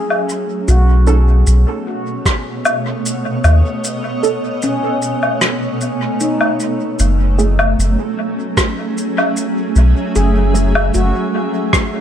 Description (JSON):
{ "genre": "ambient dub", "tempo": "76 BPM", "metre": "4/4", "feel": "straight", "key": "F# dorian", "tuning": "A4 = 440 Hz", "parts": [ { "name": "granular cloud pad", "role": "sustained chords", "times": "0.0-12.0 s", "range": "B2 to E5", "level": "-20 LUFS", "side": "right 1 dB", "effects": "built-in reverb" }, { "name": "handpan", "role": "arpeggios", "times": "0.0-12.0 s", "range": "C#4 to G#4", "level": "-24 LUFS", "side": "left 2 dB", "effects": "dub echo" }, { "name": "woodblock, shaker and rim click", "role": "drums", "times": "0.1-11.9 s", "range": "none", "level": "-18 LUFS", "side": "left 1 dB", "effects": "dub echo" }, { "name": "soft dub sub bass", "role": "bass", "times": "0.7-11.1 s", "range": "F#1 to D#2", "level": "-11 LUFS", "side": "equal", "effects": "none" }, { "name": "filtered dub chord stab", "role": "stabs", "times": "1.1-10.7 s", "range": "A3 to A4", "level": "-23 LUFS", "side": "right 6 dB", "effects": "phaser, lush chorus, dub echo" }, { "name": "electronic kick drum", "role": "drums", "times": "2.3-2.4, 8.6-11.9 s", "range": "none", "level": "-17 LUFS", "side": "equal", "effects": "none" } ], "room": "light reverb", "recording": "none", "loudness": "-13 LUFS", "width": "side -9 dB against mid", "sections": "0.0-7.0 A section; 7.0-12.0 B section", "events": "filter sweep on handpan 0.0-7.0; break 3.8-7.0", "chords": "0.0 F#m7; 0.7 B7; 7.0 F#m7" }